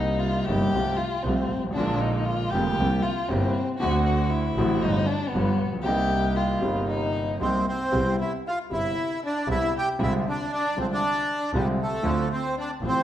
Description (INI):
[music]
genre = tango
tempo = 117 BPM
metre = 4/4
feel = rubato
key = C minor, C major from 7.9 s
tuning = A4 = 440 Hz
[part]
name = warm violin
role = second line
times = 0.0-13.0 s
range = G3 to G4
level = -29 LUFS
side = left 2 dB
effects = none
[part]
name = warm concert grand piano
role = accompaniment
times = 0.0-13.0 s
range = F1 to F#4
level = -26 LUFS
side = equal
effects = none
[part]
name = clear double bass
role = bass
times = 0.0-13.0 s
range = F1 to D2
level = -29 LUFS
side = right 1 dB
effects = none
[part]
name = bandoneon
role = melody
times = 7.4-13.0 s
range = G3 to G5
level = -27 LUFS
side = right 1 dB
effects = none
[sound]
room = wet recital hall reverb, RT60 1.3 s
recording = recorded in a church or concert hall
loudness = -22 LUFS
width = side -11 dB against mid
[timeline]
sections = 0.0-7.9 A section; 7.9-13.0 B section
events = violin solo 0.0-7.9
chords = 0.0 Cm7; 0.7 F/C; 1.8 Bb7; 2.8 C7; 3.8 D7; 4.8 G7sus4; 5.3 G7; 5.9 Cm7; 7.9 Cmaj7; 10.0 Fm6/C; 12.0 Dm7